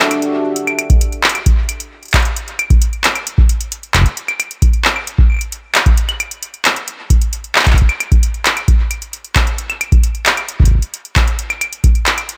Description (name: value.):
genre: IDM.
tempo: 133 BPM.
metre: 4/4.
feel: straight.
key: unclear.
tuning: A4 = 440 Hz.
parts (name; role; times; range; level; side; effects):
warm analog pad; sustained chords; 0.0-0.5 s; D4 to E5; -22 LUFS; equal; chorus, vintage 12-bit sampler grit, sidechain pumping.
booming analog drum machine; drums; 0.0-12.4 s; claves, handclaps, hi-hat; -18 LUFS; equal; overdrive.
electronic kick drum; drums; 0.9-11.9 s; none; -14 LUFS; equal; overdrive.
room: little or no reverb.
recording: none.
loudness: -15 LUFS.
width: mono.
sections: 0.6-12.4 A section.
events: break 0.0-0.6.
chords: 0.0 Em11; 0.6 N.C..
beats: 0.11 | 0.56 1.01 1.46 1.91 | 2.37 2.82 3.27 3.72 | 4.17 4.62 5.07 5.52 | 5.97 6.42 6.88 7.33 | 7.78 8.23 8.68 9.13 | 9.58 10.03 10.48 10.94 | 11.39 11.84 12.29.